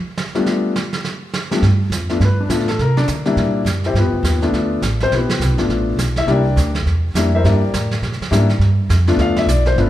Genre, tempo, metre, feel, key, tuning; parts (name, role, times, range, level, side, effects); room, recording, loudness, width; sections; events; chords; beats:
jazz piano trio; 206 BPM; 4/4; swing 60% on 8ths; G mixolydian; A4 = 440 Hz
vintage brush drum kit; drums; 0.2-9.9 s; brushed snare drum, hi-hat, snare drum; -24 LUFS; right 4 dB
warm grand piano; melody; 0.3-9.9 s; G3 to F5; -18 LUFS; left 3 dB
upright bass; bass; 1.6-9.9 s; G1 to D3; -17 LUFS; right 1 dB
moderate recital hall reverb, RT60 1.5 s; recorded in a church or concert hall; -15 LUFS; side -13 dB against mid
0.0-1.6 A section; 1.6-9.9 A section
grand piano solo 1.6-9.9
0.0 G9; 1.0 N.C.; 1.6 G9; 2.8 C9; 4.0 G9; 6.3 C9; 8.6 G9
0.17 | 0.47 0.76 1.04 1.33 | 1.62 1.92 2.21 2.50 | 2.79 3.08 3.37 3.66 | 3.95 4.24 4.53 4.82 | 5.11 5.40 5.70 5.99 | 6.28 6.57 6.86 7.15 | 7.44 7.73 8.02 8.31 | 8.60 8.89 9.19 9.48 | 9.77